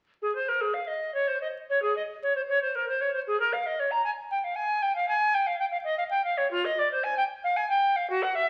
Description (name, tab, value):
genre	classical, baroque-style fantasia for unaccompanied recorder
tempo	115 BPM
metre	3/4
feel	rubato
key	F minor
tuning	A4 = 442 Hz
part	bright alto recorder	solo	0.2-8.5 s	F4 to Bb5	-27 LUFS	equal	none
room	wet stone room reverb, RT60 1.0 s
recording	very old 78 rpm record, vinyl crackle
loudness	-28 LUFS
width	mono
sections	0.2-8.5 A section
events	none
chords	none